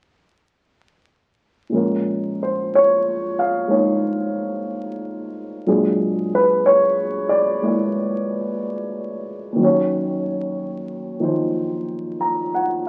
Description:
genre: jazz ballad.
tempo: 61 BPM.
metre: 4/4.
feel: swing 66% on 8ths.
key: Bb minor.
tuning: A4 = 441 Hz.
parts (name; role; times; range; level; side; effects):
dark upright piano; solo; 1.7-12.9 s; Eb2 to Bb5; -21 LUFS; equal; none.
room: wet studio reverb, RT60 0.7 s.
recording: very old 78 rpm record, vinyl crackle.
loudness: -21 LUFS.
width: mono.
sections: 1.7-12.9 A section.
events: none.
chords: 1.7 Bbm7; 5.7 Bbaug7; 9.6 Ebm9.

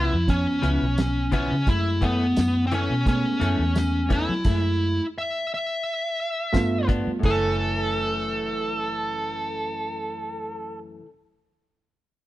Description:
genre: straight-eighth soul blues.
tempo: 86 BPM.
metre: 4/4.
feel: swing 54% on 16ths.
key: F# minor.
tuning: A4 = 441 Hz.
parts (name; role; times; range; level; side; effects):
smooth overdriven lead guitar; melody; 0.0-10.8 s; B3 to E5; -26 LUFS; equal; none.
barky reed electric piano; accompaniment; 0.0-11.0 s; E#3 to E5; -30 LUFS; right 3 dB; overdrive.
direct-recorded clean electric guitar; stabs; 0.0-11.1 s; F#2 to E4; -32 LUFS; left 3 dB; none.
vintage muted fingered electric bass; bass; 0.0-11.0 s; F#1 to G3; -26 LUFS; equal; none.
cloth-damped thuddy drum kit; drums; 0.3-7.4 s; crash cymbal, hi-hat, kick drum, snare drum, tambourine; -24 LUFS; equal; none.
room: light reverb.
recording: band playing live in one room.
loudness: -22 LUFS.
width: side -15 dB against mid.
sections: 0.0-7.2 A section; 7.2-10.0 B section.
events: stop 4.5-6.5.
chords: 0.0 C#7#9; 1.7 F#m7; 6.5 G7; 7.2 F#m7.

